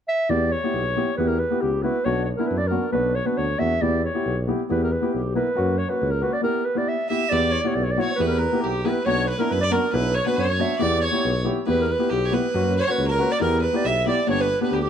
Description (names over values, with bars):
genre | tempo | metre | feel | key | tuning
klezmer | 137 BPM | 2/4 | straight | E dorian sharp4 | A4 = 440 Hz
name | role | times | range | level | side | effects
dark clarinet | melody | 0.1-14.9 s | G4 to E5 | -24 LUFS | right 1 dB | none
warm upright piano | accompaniment | 0.3-14.8 s | A#3 to A#4 | -25 LUFS | left 2 dB | none
mellow tuba | bass | 0.3-14.9 s | G1 to F#2 | -26 LUFS | equal | none
rich violin | second line | 7.1-14.9 s | G4 to E5 | -27 LUFS | right 2 dB | none
room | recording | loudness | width
light reverb | close, detailed microphones | -20 LUFS | side -8 dB against mid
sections
0.3-7.3 A section; 7.3-14.3 A section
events
none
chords
0.3 Em; 2.1 Bm; 3.8 Em; 5.6 F#; 6.4 Em; 9.1 Bm; 10.8 Em; 12.5 F#; 13.4 Em; 14.3 G